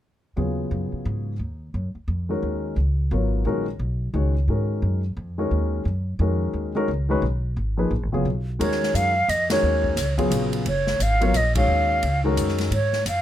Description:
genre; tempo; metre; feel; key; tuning
modal jazz; 175 BPM; 3/4; swing 62% on 8ths; Eb minor; A4 = 440 Hz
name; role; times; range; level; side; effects
warm grand piano; accompaniment; 0.4-12.7 s; Db3 to Db5; -25 LUFS; left 2 dB; none
upright bass; bass; 0.4-13.2 s; Gb1 to Ab2; -24 LUFS; equal; none
hollow concert flute; melody; 8.6-13.2 s; Db5 to F5; -22 LUFS; right 2 dB; none
swinging big-band drum kit; drums; 8.6-13.2 s; hi-hat, kick drum, ride cymbal, snare drum; -30 LUFS; left 1 dB; none
room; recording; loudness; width
little or no reverb; close, detailed microphones; -21 LUFS; side -12 dB against mid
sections
0.4-8.6 A section; 8.6-13.2 B section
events
band accent 9.5, 11.5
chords
0.4 Ebm11; 4.5 Abm11

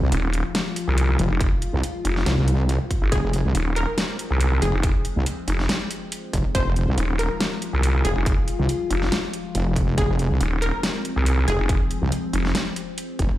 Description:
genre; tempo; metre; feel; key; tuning
heavy wobble dubstep; 140 BPM; 4/4; half-time; F minor; A4 = 439 Hz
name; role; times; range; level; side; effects
evolving wavetable pad; sustained chords; 0.0-13.4 s; F3 to F4; -31 LUFS; left 3 dB; phaser, built-in reverb, sidechain pumping
wobble bass; bass; 0.0-13.3 s; F1 to C2; -21 LUFS; equal; chorus, overdrive
vowel-sweep wobble bass; bass; 0.1-12.5 s; Eb1 to C2; -20 LUFS; equal; chorus, overdrive
dubstep drum kit; drums; 0.1-13.3 s; hi-hat, snare drum; -28 LUFS; equal; none
electronic kick drum; drums; 1.4-13.3 s; none; -23 LUFS; equal; none
wide unison pluck; melody; 3.1-13.3 s; Ab4 to C5; -30 LUFS; left 1 dB; tape echo
room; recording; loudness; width
little or no reverb; played on a big sound system in a bare room, large studio reverb; -20 LUFS; side -14 dB against mid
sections
0.0-13.4 A section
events
none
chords
0.0 Fm

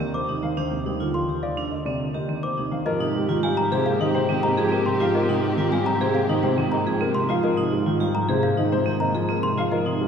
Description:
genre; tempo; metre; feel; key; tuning
classical, minimalist pattern music; 105 BPM; 4/4; straight; Ab major; A4 = 440 Hz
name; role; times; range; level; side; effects
dark baby grand piano; melody; 0.0-10.1 s; G4 to F5; -29 LUFS; left 4 dB; none
dark concert grand piano; accompaniment; 0.0-10.1 s; C3 to Bb3; -27 LUFS; left 1 dB; none
vibraphone with hard mallets; arpeggios; 0.0-10.0 s; C4 to Ab4; -27 LUFS; right 4 dB; none
rich chamber double bass section; bass; 0.0-10.1 s; Eb2 to Ab2; -29 LUFS; left 1 dB; none
small celesta; arpeggios; 0.1-9.9 s; Eb5 to D6; -29 LUFS; left 1 dB; none
warm clarinet; second line; 2.9-7.2 s; G4; -29 LUFS; left 1 dB; none
rich chamber string section; sustained chords; 2.9-7.2 s; C4 to G4; -31 LUFS; left 1 dB; none
room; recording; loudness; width
wet cathedral reverb, RT60 4.2 s; recorded in a church or concert hall; -20 LUFS; side -7 dB against mid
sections
0.0-2.9 A section; 2.9-10.1 B section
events
none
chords
0.0 Eb69; 2.9 Abmaj9

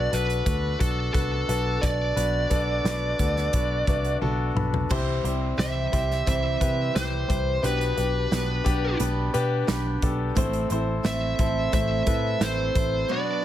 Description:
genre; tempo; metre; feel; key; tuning
piano-driven pop; 88 BPM; 4/4; straight; unclear; A4 = 438 Hz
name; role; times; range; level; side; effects
high-gain lead guitar; melody; 0.0-13.4 s; A4 to E5; -28 LUFS; right 2 dB; distortion
clear concert grand piano; accompaniment; 0.0-13.4 s; A2 to B5; -29 LUFS; left 5 dB; none
vintage muted picked electric bass; bass; 0.0-13.0 s; A1 to C3; -27 LUFS; equal; none
modern studio drum kit; drums; 0.1-12.9 s; crash cymbal, hi-hat, kick drum, snare drum, toms; -28 LUFS; equal; none
picked steel-string acoustic guitar; riff; 4.9-13.4 s; A2 to C5; -32 LUFS; right 7 dB; none
room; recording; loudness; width
light reverb, studio ambience; none; -22 LUFS; side -12 dB against mid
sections
0.0-4.9 A section; 4.9-13.4 B section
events
grand piano fill 3.5-4.9; drum fill 4.2-4.9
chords
0.0 Bm7; 4.9 C; 7.6 G/B; 10.4 Am

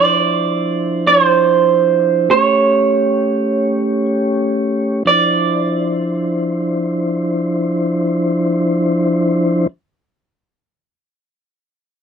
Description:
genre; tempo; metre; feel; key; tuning
blues; 40-52 BPM (dotted quarters); 12/8; straight; D minor; A4 = 439 Hz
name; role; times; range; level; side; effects
electric guitar through a small old amp; melody; 0.0-9.7 s; C5 to D5; -14 LUFS; right 6 dB; spring reverb
mellow tonewheel organ; sustained chords; 0.0-9.7 s; F3 to C#5; -16 LUFS; left 1 dB; slow rotary speaker
room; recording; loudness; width
light reverb; dry, close 1970s-style studio recording; -13 LUFS; side -7 dB against mid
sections
0.0-5.1 A section; 5.1-11.0 B section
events
slowing down 0.0-5.1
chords
0.0 Dm9; 2.3 A7; 5.1 Dm9

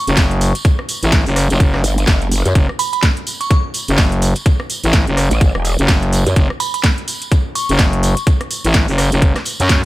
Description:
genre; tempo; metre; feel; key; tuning
bass house; 126 BPM; 4/4; swing 58% on 16ths; F# phrygian; A4 = 440 Hz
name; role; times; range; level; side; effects
glassy synth bell; melody; 0.0-3.6, 6.6-8.2 s; B5 to C#6; -24 LUFS; right 3 dB; chorus, phaser, dub echo
growling FM bass; bass; 0.1-9.8 s; F#1 to F#2; -15 LUFS; equal; overdrive, sidechain pumping
garage drum kit; drums; 0.1-9.8 s; hi-hat, rim click, snare drum; -20 LUFS; equal; studio reverb
tambourine; percussion; 0.1-9.8 s; none; -27 LUFS; right 2 dB; none
electronic kick drum; drums; 0.2-9.8 s; none; -15 LUFS; equal; studio reverb
growl bass; bass; 1.8-6.3 s; E1 to F#2; -15 LUFS; equal; chorus, overdrive, sidechain pumping
room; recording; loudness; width
digital ambience; none; -13 LUFS; side -17 dB against mid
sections
0.0-9.8 A section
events
none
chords
none

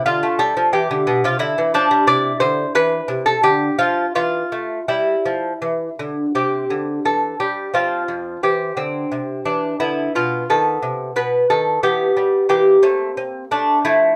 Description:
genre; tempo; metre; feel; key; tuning
classical, baroque-style dance for lute; 88 BPM; 3/4; rubato; unclear; A4 = 440 Hz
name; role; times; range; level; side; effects
lute; solo; 0.0-14.2 s; F2 to D5; -18 LUFS; equal; none
room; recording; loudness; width
moderate studio ambience, RT60 0.5 s; band playing live in one room; -19 LUFS; mono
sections
0.0-6.4 A section; 6.4-14.2 B section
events
none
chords
0.1 Bdim/D; 2.1 Cmaj13; 3.4 Dm; 4.2 Esus4; 5.6 Dsus2; 6.4 C; 7.8 F5; 8.4 C; 9.8 Bdim/D; 10.5 B7; 11.8 Em; 12.5 C7/E

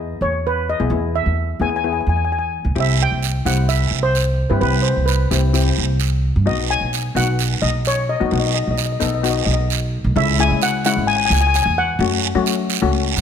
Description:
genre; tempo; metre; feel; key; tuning
calypso; 130 BPM; 4/4; swing 53% on 16ths; E major; A4 = 440 Hz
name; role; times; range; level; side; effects
steel pan; melody; 0.0-12.4 s; B4 to G#5; -21 LUFS; left 1 dB; none
steel pan; accompaniment; 0.0-13.2 s; G#3 to A4; -24 LUFS; left 9 dB; none
upright bass; bass; 0.0-13.2 s; G#1 to F#3; -19 LUFS; right 1 dB; none
guiro; percussion; 2.8-13.2 s; none; -25 LUFS; right 11 dB; none
room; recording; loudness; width
light reverb; close, detailed microphones; -16 LUFS; side -8 dB against mid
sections
0.0-10.2 A section; 10.2-13.2 B section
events
none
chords
0.0 E; 2.8 Cmaj7; 6.5 B; 10.2 C#m; 12.0 F#m

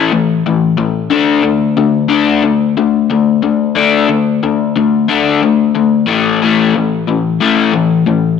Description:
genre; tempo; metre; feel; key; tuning
rock; 91 BPM; 4/4; straight; unclear; A4 = 440 Hz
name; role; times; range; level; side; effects
crunchy overdriven guitar; solo; 0.0-8.4 s; A2 to D4; -10 LUFS; left 6 dB; none
room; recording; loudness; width
moderate echo chamber reverb, RT60 1.6 s; none; -10 LUFS; side -6 dB against mid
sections
0.0-8.4 A section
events
none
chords
0.0 A5; 1.1 D5; 6.1 A5

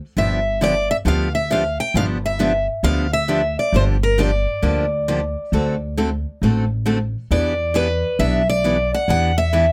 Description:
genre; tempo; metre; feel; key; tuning
acoustic string swing (jazz manouche); 135 BPM; 4/4; swing 63% on 8ths; unclear; A4 = 440 Hz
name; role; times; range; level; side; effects
picked steel-string acoustic guitar; melody; 0.2-9.7 s; Bb4 to G5; -22 LUFS; equal; none
picked steel-string acoustic guitar; accompaniment; 0.2-9.7 s; D3 to A4; -24 LUFS; equal; none
upright bass; bass; 0.2-9.7 s; G1 to E2; -24 LUFS; equal; none
room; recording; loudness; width
little or no reverb; close, detailed microphones; -19 LUFS; mono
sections
0.0-9.7 A section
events
none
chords
0.2 G7; 3.7 Gm7; 5.5 D7; 7.3 Em7

